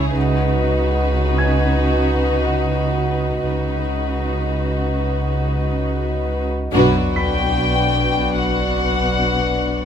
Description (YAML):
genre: cinematic, suspense film score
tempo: free time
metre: none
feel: none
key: B minor from 6.7 s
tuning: A4 = 441 Hz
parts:
  - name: warm chamber violin section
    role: melody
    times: 0.0-9.8 s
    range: B4 to G5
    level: -24 LUFS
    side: left 5 dB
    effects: none
  - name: warm chamber violin section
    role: second line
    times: 0.0-9.8 s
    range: F#4 to B4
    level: -25 LUFS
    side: left 1 dB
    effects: none
  - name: warm chamber viola section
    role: accompaniment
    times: 0.0-9.8 s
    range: F#3 to E4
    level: -25 LUFS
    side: equal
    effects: none
  - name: glass harmonica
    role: sustained chords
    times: 0.0-9.8 s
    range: D4 to E5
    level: -27 LUFS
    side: equal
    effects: none
  - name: dark chamber cello section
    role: bass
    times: 0.0-9.8 s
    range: B2 to C#3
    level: -25 LUFS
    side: right 3 dB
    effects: none
  - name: rich chamber double bass section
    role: bass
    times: 0.0-9.8 s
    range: B1 to C#2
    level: -25 LUFS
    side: right 3 dB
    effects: none
  - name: warm sub bass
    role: drone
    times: 0.0-9.8 s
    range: B1 to C#2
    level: -24 LUFS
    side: equal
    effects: none
  - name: felt-muted upright piano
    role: texture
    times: 0.0-9.8 s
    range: G#5 to B6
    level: -32 LUFS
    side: left 2 dB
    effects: none
  - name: sub drop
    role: sound effects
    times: 6.7-9.8 s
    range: none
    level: -28 LUFS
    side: left 1 dB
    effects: none
room: moderate recital hall reverb, RT60 1.7 s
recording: close, detailed microphones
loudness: -16 LUFS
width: side -8 dB against mid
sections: 0.0-6.7 A section; 6.7-9.8 B section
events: band accent 6.7-7.6; impact 6.7-9.8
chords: 0.2 B/C#; 6.7 Bm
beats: free time